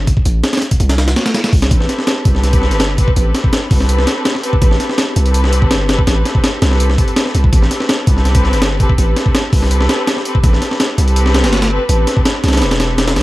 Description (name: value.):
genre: drum and bass, jungle.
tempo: 165 BPM.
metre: 4/4.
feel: straight.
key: A minor.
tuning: A4 = 440 Hz.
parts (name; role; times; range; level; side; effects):
long sustained 808-style bass; bass; 0.0-13.2 s; E1 to D2; -14 LUFS; equal; none.
breakbeat sampler-style drum kit; drums; 0.1-13.2 s; hi-hat, kick drum, snare drum; -14 LUFS; equal; none.
muted studio string section; sustained chords; 1.7-13.2 s; C4 to B4; -19 LUFS; left 1 dB; none.
room: light reverb, digital ambience.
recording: vinyl crackle.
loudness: -11 LUFS.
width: side -18 dB against mid.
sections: 0.0-13.2 A section.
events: kick drops out 12.6-13.2.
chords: 0.0 Am9.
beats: | 0.26 0.62 0.98 1.35 | 1.71 2.07 2.44 2.80 | 3.17 3.53 3.89 4.26 | 4.62 4.98 5.35 5.71 | 6.07 6.44 6.80 7.17 | 7.53 7.89 8.26 8.62 | 8.98 9.35 9.71 10.07 | 10.44 10.80 11.16 11.53 | 11.89 12.26 12.62 12.98.